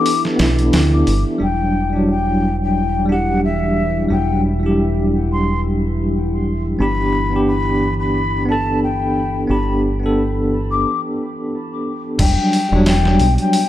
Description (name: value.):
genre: trip hop.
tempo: 89 BPM.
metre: 4/4.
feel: swing 56% on 16ths.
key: E minor.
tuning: A4 = 440 Hz.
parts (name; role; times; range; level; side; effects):
mellow silver concert flute; melody; 0.0-13.7 s; E5 to D6; -22 LUFS; left 4 dB; tape echo.
bell-like tine electric piano; accompaniment; 0.0-13.7 s; F#3 to A4; -18 LUFS; right 1 dB; tremolo.
deep dark ambient pad; sustained chords; 0.0-13.7 s; E3 to D5; -26 LUFS; left 1 dB; chorus, built-in reverb.
trip hop sampler-style drum kit; drums; 0.1-1.2, 12.2-13.7 s; crash cymbal, hi-hat, kick drum, snare drum; -21 LUFS; equal; none.
deep dub fingered electric bass; bass; 0.4-13.4 s; E1 to D2; -20 LUFS; equal; tube saturation.
room: digital ambience.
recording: none.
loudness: -15 LUFS.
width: side -13 dB against mid.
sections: 0.0-1.4 A section; 1.4-12.2 B section; 12.2-13.7 C section.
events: filter sweep on tine electric piano 0.0-1.4; break 10.8-12.2.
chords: 0.0 G; 1.4 Em7; 6.8 G; 12.2 Em7.